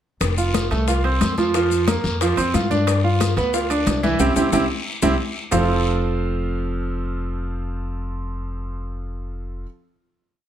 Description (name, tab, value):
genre	latin, salsa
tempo	181 BPM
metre	4/4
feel	straight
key	F major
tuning	A4 = 440 Hz
part	upright bass	bass	0.2-9.6 s	F1 to G2	-24 LUFS	left 1 dB	none
part	bongos	percussion	0.2-5.6 s	none	-29 LUFS	left 8 dB	none
part	congas	percussion	0.2-5.6 s	none	-26 LUFS	left 4 dB	none
part	guiro	percussion	0.2-5.6 s	none	-33 LUFS	left 4 dB	none
part	maracas	percussion	0.2-5.6 s	none	-33 LUFS	left 9 dB	none
part	timbales	percussion	0.2-5.6 s	none	-28 LUFS	right 6 dB	none
part	bright concert grand piano	accompaniment	0.4-9.6 s	E3 to F5	-22 LUFS	right 3 dB	none
room	light reverb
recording	none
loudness	-18 LUFS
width	side -10 dB against mid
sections	0.2-5.5 A section; 5.5-8.2 final chord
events	drum fill 4.2-5.5; band accent 4.2-5.5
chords	0.2 F; 1.5 Bbadd9/F; 2.9 G7; 4.2 C; 5.5 F